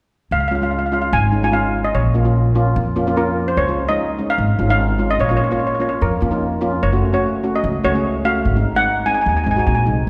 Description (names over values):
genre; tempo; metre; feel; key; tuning
calypso; 148 BPM; 4/4; swing 54% on 16ths; Db major; A4 = 440 Hz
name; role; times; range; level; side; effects
steel pan; melody; 0.3-9.8 s; Bb4 to Ab5; -22 LUFS; equal; none
upright bass; bass; 0.3-10.1 s; Gb1 to F2; -22 LUFS; equal; none
steel pan; accompaniment; 0.5-10.1 s; Ab3 to Ab4; -23 LUFS; equal; none
room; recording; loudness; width
wet scoring stage reverb, RT60 2.1 s; recorded in a church or concert hall; -18 LUFS; mono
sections
0.3-3.6 A section; 3.6-10.1 B section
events
none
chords
0.3 Db; 1.9 Bbm; 3.6 Dbadd9; 5.2 Bbm; 6.8 Gbm; 8.4 Ab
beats
| 0.31 0.72 1.13 1.53 | 1.94 2.35 2.76 3.16 | 3.57 3.98 4.38 4.79 | 5.20 5.61 6.01 6.42 | 6.83 7.23 7.64 8.04 | 8.45 8.86 9.26 9.67 | 10.07